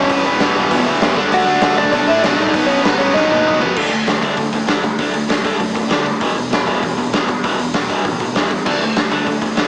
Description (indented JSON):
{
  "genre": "punk rock",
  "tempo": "196 BPM",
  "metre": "4/4",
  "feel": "straight",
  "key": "unclear",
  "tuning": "A4 = 440 Hz",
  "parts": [
    { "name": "lightly driven lead guitar", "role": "melody", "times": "0.0-3.6 s", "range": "B3 to F#5", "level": "-19 LUFS", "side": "equal", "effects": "none" },
    { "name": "distorted electric guitar", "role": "riff", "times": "0.0-9.7 s", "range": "E2 to D4", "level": "-22 LUFS", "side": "equal", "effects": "distortion" },
    { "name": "distorted electric guitar", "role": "riff", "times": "0.0-3.8 s", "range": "E2 to D4", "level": "-22 LUFS", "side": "equal", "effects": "overdrive" },
    { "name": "overdriven picked electric bass", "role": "bass", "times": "0.0-9.7 s", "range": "E1 to D3", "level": "-30 LUFS", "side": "equal", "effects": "none" },
    { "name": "raw garage drum kit", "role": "drums", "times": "0.0-9.6 s", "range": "crash cymbal, hi-hat, kick drum, snare drum, toms", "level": "-20 LUFS", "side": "equal", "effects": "none" }
  ],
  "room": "light reverb",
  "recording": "heavily compressed radio sound, small speaker sound",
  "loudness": "-16 LUFS",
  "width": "mono",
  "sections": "0.0-3.8 A section; 3.8-9.7 B section",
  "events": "drum fill 3.2-3.8",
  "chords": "0.0 E5; 1.2 D; 2.5 B; 3.8 D5; 6.2 E5; 8.7 D5"
}